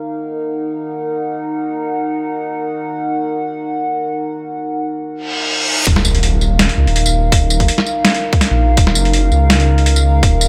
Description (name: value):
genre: half-time drum and bass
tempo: 165 BPM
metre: 4/4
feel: swing 54% on 16ths, half-time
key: Eb minor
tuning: A4 = 437 Hz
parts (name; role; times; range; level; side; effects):
- dark analog pad; sustained chords; 0.0-10.5 s; Eb4 to Gb5; -22 LUFS; equal; chorus, phaser, sidechain pumping
- reverse cymbal and impact; sound effects; 5.3-7.3 s; none; -21 LUFS; equal; none
- dark detuned saw bass; bass; 5.9-10.5 s; Eb1 to Db2; -16 LUFS; equal; none
- boom bap sampler-style drum kit; drums; 5.9-10.5 s; hi-hat, snare drum, tambourine; -18 LUFS; equal; overdrive, studio reverb
- electronic kick drum; drums; 5.9-10.3 s; none; -15 LUFS; equal; overdrive, studio reverb
room: moderate plate reverb, RT60 1.9 s, digital ambience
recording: dreamy mix soaked in reverb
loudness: -16 LUFS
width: mono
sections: 0.0-5.9 A section; 5.9-10.5 B section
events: reverse cymbal 5.3-5.9; drop 5.9-10.5; impact 5.9-7.3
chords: 0.0 Eb5